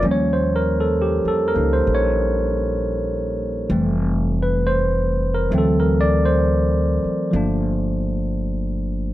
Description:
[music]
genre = jazz ballad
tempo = 66 BPM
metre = 4/4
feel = swing 68% on 8ths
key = unclear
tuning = A4 = 440 Hz
[part]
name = tine electric piano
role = accompaniment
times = 0.0-9.1 s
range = E3 to D5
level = -19 LUFS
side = equal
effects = none
[part]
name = upright bass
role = bass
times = 0.0-9.1 s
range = F1 to F2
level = -22 LUFS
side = equal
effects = none
[sound]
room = light reverb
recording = dark, warm production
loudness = -18 LUFS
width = side -15 dB against mid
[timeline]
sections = 0.0-9.1 A section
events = none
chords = 0.0 Eb9; 3.7 Fmaj7; 5.5 D7; 7.3 Gm7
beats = | 0.04 0.95 1.86 2.78 | 3.69 4.60 5.51 6.42 | 7.34 8.25

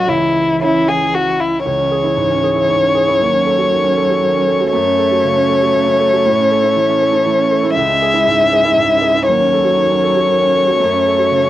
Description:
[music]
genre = neoclassical piano and strings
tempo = 118 BPM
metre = 3/4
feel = rubato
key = C# minor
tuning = A4 = 440 Hz
[part]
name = muted violin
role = melody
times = 0.0-11.5 s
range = E4 to E5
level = -13 LUFS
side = left 3 dB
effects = cassette tape
[part]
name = muted cello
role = second line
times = 0.0-11.5 s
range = E3 to A3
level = -24 LUFS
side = right 4 dB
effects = cassette tape
[part]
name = felt-muted upright piano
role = accompaniment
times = 0.0-11.5 s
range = A1 to D#5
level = -18 LUFS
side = right 5 dB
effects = cassette tape
[sound]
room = moderate studio reverb, RT60 0.6 s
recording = home recording on cassette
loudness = -12 LUFS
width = side -13 dB against mid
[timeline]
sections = 0.0-1.7 A section; 1.7-11.5 B section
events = none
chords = 0.1 C#m; 3.2 D#m7b5; 4.7 F#m; 6.3 A; 7.8 C#m; 9.3 D#m7b5; 10.8 F#m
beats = | 0.08 0.61 1.14 | 1.66 2.17 2.69 | 3.20 3.71 4.22 | 4.73 5.24 5.75 | 6.25 6.76 7.27 | 7.77 8.27 8.78 | 9.28 9.79 10.29 | 10.79 11.31

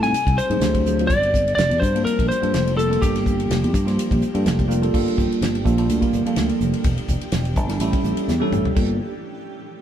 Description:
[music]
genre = electric jazz fusion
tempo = 125 BPM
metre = 4/4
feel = swing 54% on 16ths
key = G dorian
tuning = A4 = 440 Hz
[part]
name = lightly driven lead guitar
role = melody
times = 0.0-4.7 s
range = G4 to Ab5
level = -22 LUFS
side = left 2 dB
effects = none
[part]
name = bell-like tine electric piano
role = accompaniment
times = 0.0-9.0 s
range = Gb3 to C5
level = -23 LUFS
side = right 1 dB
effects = phaser
[part]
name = granular cloud pad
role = sustained chords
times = 0.0-9.0 s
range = E3 to G4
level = -32 LUFS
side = right 1 dB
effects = built-in reverb
[part]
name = fingered electric bass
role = bass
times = 0.0-9.0 s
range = E1 to A2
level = -22 LUFS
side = equal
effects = none
[part]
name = damped 70s drum kit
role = drums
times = 0.0-8.9 s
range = crash cymbal, hi-hat, kick drum, ride cymbal, snare drum, toms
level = -24 LUFS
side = equal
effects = none
[sound]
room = wet stone room reverb, RT60 1.4 s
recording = band playing live in one room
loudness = -18 LUFS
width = side -10 dB against mid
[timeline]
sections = 0.0-4.9 A section; 4.9-8.8 B section; 8.8-9.8 C section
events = drum fill 8.3-8.8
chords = 0.1 Ab7#11; 1.1 Gm9; 6.8 Em7b5; 7.8 A7; 8.8 Gm9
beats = 0.13 0.61 | 1.09 1.57 2.05 2.53 | 3.01 3.49 3.97 4.45 | 4.93 5.41 5.89 6.37 | 6.85 7.33 7.80 8.29 | 8.76

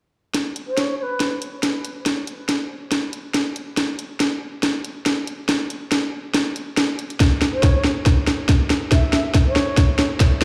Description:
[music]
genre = deep dubstep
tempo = 140 BPM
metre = 4/4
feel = swing 53% on 16ths, half-time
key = unclear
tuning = A4 = 440 Hz
[part]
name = garage drum kit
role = drums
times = 0.3-10.4 s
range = hi-hat, snare drum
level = -23 LUFS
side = equal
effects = overdrive
[part]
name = reedy long shakuhachi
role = melody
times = 0.7-1.3, 7.5-10.1 s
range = B4 to E5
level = -30 LUFS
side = equal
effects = low-pass filter, dub echo
[part]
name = electronic kick drum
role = drums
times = 7.2-10.3 s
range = none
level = -20 LUFS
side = equal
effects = none
[sound]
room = moderate spring reverb, RT60 1.3 s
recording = played on a big sound system in a bare room, stone room reverb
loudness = -21 LUFS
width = mono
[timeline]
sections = 0.3-10.4 A section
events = build-up 0.3-10.4; drum fill 0.3-10.4; filter sweep on shakuhachi 0.3-10.4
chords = none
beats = | 0.34 0.77 1.20 1.63 | 2.06 2.49 2.92 3.35 | 3.77 4.20 4.63 5.06 | 5.49 5.92 6.34 6.77 | 7.20 7.63 8.06 8.49 | 8.92 9.35 9.77 10.20

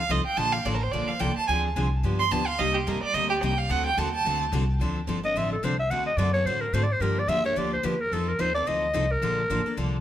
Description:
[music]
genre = acoustic string swing (jazz manouche)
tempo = 217 BPM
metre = 4/4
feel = swing 57% on 8ths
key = D minor from 4.8 s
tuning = A4 = 438 Hz
[part]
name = warm violin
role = second line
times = 0.0-4.4 s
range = G4 to C6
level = -26 LUFS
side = right 4 dB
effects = tape echo
[part]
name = upright bass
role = bass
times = 0.0-10.0 s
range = G1 to A2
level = -29 LUFS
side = equal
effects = none
[part]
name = picked steel-string acoustic guitar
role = accompaniment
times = 0.1-10.0 s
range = C3 to A4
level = -32 LUFS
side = left 4 dB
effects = none
[part]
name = picked steel-string acoustic guitar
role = accompaniment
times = 0.1-10.0 s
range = C3 to A4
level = -34 LUFS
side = right 4 dB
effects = none
[part]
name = growling clarinet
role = melody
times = 5.2-9.8 s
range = A4 to F#5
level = -26 LUFS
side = left 1 dB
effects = none
[sound]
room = moderate studio reverb, RT60 0.7 s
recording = none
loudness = -23 LUFS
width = side -11 dB against mid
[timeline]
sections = 0.0-4.8 A section; 4.8-10.0 A section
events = violin solo 0.0-4.8; clarinet solo 4.8-10.0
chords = 0.4 Bbmaj7; 1.5 Dm7b5; 2.0 G7; 2.6 Cm11; 3.7 D7; 4.8 Dm7; 5.9 D7; 7.0 Gm7; 8.1 F6; 9.2 Bbmaj9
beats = 0.11 | 0.38 0.66 0.94 1.21 | 1.49 1.76 2.04 2.32 | 2.59 2.87 3.15 3.42 | 3.70 3.98 4.25 4.53 | 4.80 5.08 5.36 5.63 | 5.91 6.18 6.46 6.74 | 7.01 7.29 7.57 7.84 | 8.12 8.39 8.67 8.95 | 9.22 9.50 9.77

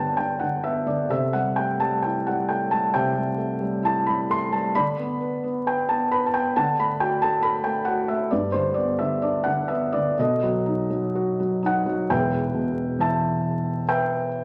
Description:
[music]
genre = classical, lyrical solo piano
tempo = 61-70 BPM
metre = 4/4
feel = rubato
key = G major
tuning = A4 = 441 Hz
[part]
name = felt-muted upright piano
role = solo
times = 0.0-14.4 s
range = E1 to C6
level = -24 LUFS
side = equal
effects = none
[sound]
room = wet recital hall reverb, RT60 1.5 s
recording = vinyl crackle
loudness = -24 LUFS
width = mono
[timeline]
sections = 0.0-12.1 A section; 12.1-14.4 B section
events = none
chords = 0.0 G; 1.1 C6; 4.7 Gadd9/D; 6.6 D; 8.3 G; 10.2 B7; 12.1 Em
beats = 0.18 | 1.10 2.03 2.94 3.84 | 4.74 5.65 6.56 7.44 | 8.31 9.22 10.18 11.16 | 12.10 12.99 13.88

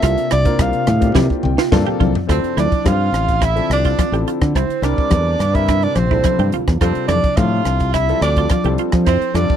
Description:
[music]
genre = electric jazz fusion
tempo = 106 BPM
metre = 4/4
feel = straight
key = unclear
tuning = A4 = 440 Hz
[part]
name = breathy soprano saxophone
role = melody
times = 0.0-9.6 s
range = C5 to F5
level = -21 LUFS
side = equal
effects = slapback echo
[part]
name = clear concert grand piano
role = accompaniment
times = 0.0-9.6 s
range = F3 to G5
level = -24 LUFS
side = left 9 dB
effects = none
[part]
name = ethereal airy pad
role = sustained chords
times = 0.0-9.6 s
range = C3 to E5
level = -27 LUFS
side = equal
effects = none
[part]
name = clean electric guitar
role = stabs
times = 0.0-9.6 s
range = D4 to G4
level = -24 LUFS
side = right 15 dB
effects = lush chorus
[part]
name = modern bright fingered electric bass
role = bass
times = 0.0-9.5 s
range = A1 to F3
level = -18 LUFS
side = equal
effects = none
[part]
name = crisp fusion drum kit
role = drums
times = 0.0-9.6 s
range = hi-hat, kick drum, rim click, snare drum, toms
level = -19 LUFS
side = equal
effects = none
[part]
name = congas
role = percussion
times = 0.0-9.4 s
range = none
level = -24 LUFS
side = left 7 dB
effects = none
[part]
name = bright tenor saxophone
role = second line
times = 2.3-9.6 s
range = C4 to F4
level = -24 LUFS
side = right 16 dB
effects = none
[sound]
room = little or no reverb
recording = dry, close 1970s-style studio recording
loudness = -14 LUFS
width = side -9 dB against mid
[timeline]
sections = 0.0-2.3 A section; 2.3-9.6 B section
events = soprano saxophone solo 0.0-2.3; drum fill 1.2-2.3; grand piano fill 1.2-2.3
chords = 0.0 C9sus4; 2.3 Dm9; 4.5 C9; 6.8 F6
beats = | 0.03 0.59 1.16 1.72 | 2.29 2.85 3.42 3.98 | 4.55 5.12 5.68 6.25 | 6.81 7.38 7.94 8.51 | 9.07

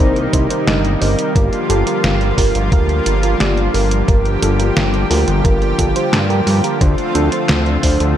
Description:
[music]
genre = synthwave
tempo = 88 BPM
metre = 4/4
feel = straight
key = unclear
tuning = A4 = 440 Hz
[part]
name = lush unison pad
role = sustained chords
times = 0.0-8.2 s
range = C3 to G4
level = -19 LUFS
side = equal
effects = chorus, sidechain pumping
[part]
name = mellow FM electric piano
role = stabs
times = 0.0-8.1 s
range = D4 to Eb5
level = -20 LUFS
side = right 3 dB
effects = chorus, phaser, cassette tape, digital delay
[part]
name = fat analog bass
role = bass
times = 0.0-8.1 s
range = G1 to G2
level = -17 LUFS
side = equal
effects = tube saturation
[part]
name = detuned 8-bit digital drum machine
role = drums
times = 0.2-8.1 s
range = handclaps, hi-hat, snare drum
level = -20 LUFS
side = equal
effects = gated reverb
[part]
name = electronic kick drum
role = drums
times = 0.3-8.0 s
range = none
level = -15 LUFS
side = equal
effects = none
[sound]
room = light reverb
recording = none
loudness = -13 LUFS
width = side -10 dB against mid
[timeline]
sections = 0.0-8.2 A section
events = none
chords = 0.0 Cm7; 1.4 Gm7; 6.8 Dm7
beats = 0.67 | 1.36 2.04 2.72 3.40 | 4.08 4.76 5.45 6.13 | 6.81 7.49 8.17

